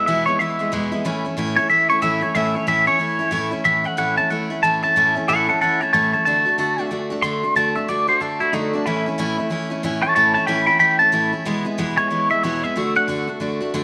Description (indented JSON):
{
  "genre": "rock",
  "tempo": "184 BPM",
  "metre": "4/4",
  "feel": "swing 61% on 8ths",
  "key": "A major",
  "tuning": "A4 = 438 Hz",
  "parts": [
    { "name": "twangy electric guitar", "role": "melody", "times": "0.0-13.3 s", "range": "D4 to C6", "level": "-20 LUFS", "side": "equal", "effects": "phaser, tape echo" },
    { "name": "picked steel-string acoustic guitar", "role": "accompaniment", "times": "0.0-13.8 s", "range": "E2 to F#4", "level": "-25 LUFS", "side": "equal", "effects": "none" }
  ],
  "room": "moderate echo chamber reverb, RT60 1.4 s, small room ambience",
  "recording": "none",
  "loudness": "-19 LUFS",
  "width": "mono",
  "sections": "0.0-1.0 A section; 1.0-13.8 B section",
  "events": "clean electric guitar solo 0.0-1.0",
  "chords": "0.0 E; 1.0 A; 6.3 D; 8.9 A; 11.5 E; 12.8 D",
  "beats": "0.07 0.40 0.72 | 1.05 1.37 1.70 2.02 | 2.35 2.68 3.00 3.33 | 3.65 3.98 4.30 4.63 | 4.96 5.28 5.61 5.93 | 6.26 6.58 6.91 7.23 | 7.56 7.88 8.21 8.53 | 8.86 9.18 9.51 9.83 | 10.16 10.48 10.81 11.13 | 11.46 11.78 12.11 12.43 | 12.76 13.08 13.41 13.73"
}